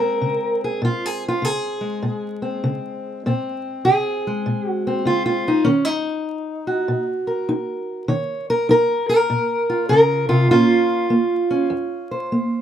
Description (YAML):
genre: acoustic country blues, solo or duo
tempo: 99 BPM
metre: 4/4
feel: swing 65% on 8ths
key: Bb minor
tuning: A4 = 440 Hz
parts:
  - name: fingerpicked steel-string acoustic guitar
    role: solo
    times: 0.0-12.6 s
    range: F2 to Db5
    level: -18 LUFS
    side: equal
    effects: none
room: light reverb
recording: close, detailed microphones, vinyl crackle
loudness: -18 LUFS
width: side -10 dB against mid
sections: 0.0-12.6 A section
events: none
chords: 0.0 Bbm9; 5.6 Ebm9; 10.5 Bbmadd9